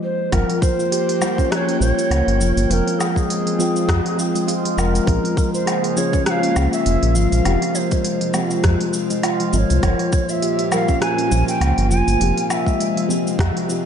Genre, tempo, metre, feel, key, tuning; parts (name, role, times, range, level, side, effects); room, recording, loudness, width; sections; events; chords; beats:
organic downtempo; 101 BPM; 4/4; swing 56% on 16ths; F minor; A4 = 437 Hz
mellow hollow Native American-style cedar flute; melody; 0.0-13.1 s; Ab4 to Ab5; -24 LUFS; equal; ping-pong delay, slapback echo
deep mellow chord stab; accompaniment; 0.3-13.9 s; C3 to G5; -28 LUFS; right 1 dB; chorus, sidechain pumping, ping-pong delay
airy breathy pad; sustained chords; 0.8-13.9 s; Bb2 to G5; -27 LUFS; equal; chorus, vintage 12-bit sampler grit, sidechain pumping
handpan; arpeggios; 0.3-13.8 s; F3 to Ab4; -22 LUFS; left 1 dB; ping-pong delay
round analog bass; bass; 0.3-13.5 s; F1 to F2; -18 LUFS; equal; sidechain pumping
electronic kick drum; drums; 0.3-13.5 s; -21 LUFS; equal
organic electronic drum kit; drums; 0.3-13.8 s; cabasa, hi-hat, rim click, woodblock; -25 LUFS; equal
moderate lush hall reverb, RT60 2.7 s; big arena sound, nothing above 10.7 kHz; -16 LUFS; side -8 dB against mid
0.3-13.9 A section
break 0.0-0.3
0.3 Gm7b5; 2.7 Fmadd9; 5.1 Bbm7; 7.5 Fmadd9; 9.8 Gm7b5; 12.2 Fmadd9
| 0.32 0.92 1.51 2.11 | 2.70 3.29 3.89 4.48 | 5.08 5.67 6.26 6.86 | 7.45 8.05 8.64 9.23 | 9.83 10.42 11.02 11.61 | 12.21 12.80 13.39